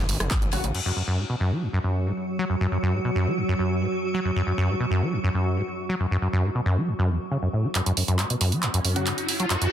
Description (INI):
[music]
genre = driving peak-time techno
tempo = 137 BPM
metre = 4/4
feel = straight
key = F# minor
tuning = A4 = 441 Hz
[part]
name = acid bass, saw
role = riff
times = 0.0-9.7 s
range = F#1 to F#3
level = -24 LUFS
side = equal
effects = sidechain pumping, tape echo
[part]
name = gritty driven synth bass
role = bass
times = 0.0-0.7 s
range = F#1 to A1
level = -28 LUFS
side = equal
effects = tube saturation, sidechain pumping
[part]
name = damped 70s drum kit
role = drums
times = 0.1-0.6 s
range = ride cymbal, snare drum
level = -44 LUFS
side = left 5 dB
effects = none
[part]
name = techno drum kit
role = drums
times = 0.1-0.8, 7.8-9.7 s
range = crash cymbal, handclaps, hi-hat, rim click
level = -28 LUFS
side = right 2 dB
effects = none
[part]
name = rave stab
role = stabs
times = 0.5-0.6, 9.0-9.1 s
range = C#3 to F#4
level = -32 LUFS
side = left 2 dB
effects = chorus, built-in reverb, cassette tape, sidechain pumping, tape echo
[part]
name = swarming drone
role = drone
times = 1.6-7.8 s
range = F#3 to F#4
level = -30 LUFS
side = right 1 dB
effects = built-in reverb, sidechain pumping
[part]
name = riser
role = sound effects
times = 8.3-9.7 s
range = none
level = -31 LUFS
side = equal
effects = none
[sound]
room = moderate digital room reverb, RT60 1.1 s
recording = dense, heavily limited modern master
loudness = -22 LUFS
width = side -10 dB against mid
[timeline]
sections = 0.7-7.8 A section; 7.8-9.7 B section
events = build-up 7.8-9.7; drum fill 7.8-9.7; riser 8.3-9.7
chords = 0.0 F#5